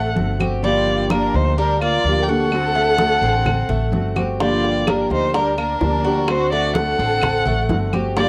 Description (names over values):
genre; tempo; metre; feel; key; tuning
latin, Cuban son and guajira; 128 BPM; 4/4; straight; unclear; A4 = 441 Hz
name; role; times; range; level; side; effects
warm violin; melody; 0.0-8.3 s; Bb4 to G5; -24 LUFS; equal; cassette tape, plate reverb
warm studio violin section; second line; 0.0-8.3 s; D4 to Bb4; -27 LUFS; equal; cassette tape, plate reverb
Cuban tres; arpeggios; 0.0-8.3 s; G3 to G4; -29 LUFS; equal; cassette tape, plate reverb
upright bass; bass; 0.0-8.3 s; G1 to D2; -26 LUFS; equal; none
nylon-string guitar; accompaniment; 0.2-8.3 s; D3 to G4; -25 LUFS; equal; cassette tape, plate reverb
congas; percussion; 0.2-8.3 s; none; -28 LUFS; equal; none
claves; percussion; 0.4-8.2 s; none; -32 LUFS; equal; none
bongos; percussion; 4.4-8.3 s; none; -27 LUFS; equal; none
room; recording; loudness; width
light reverb; home recording on cassette; -19 LUFS; mono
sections
0.0-8.3 A section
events
none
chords
0.0 D7; 0.6 Gm7; 2.5 D7; 4.4 Gm7; 6.3 D7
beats
0.17 | 0.64 1.11 1.58 2.05 | 2.52 2.99 3.46 3.93 | 4.40 4.87 5.34 5.82 | 6.29 6.76 7.23 7.70 | 8.17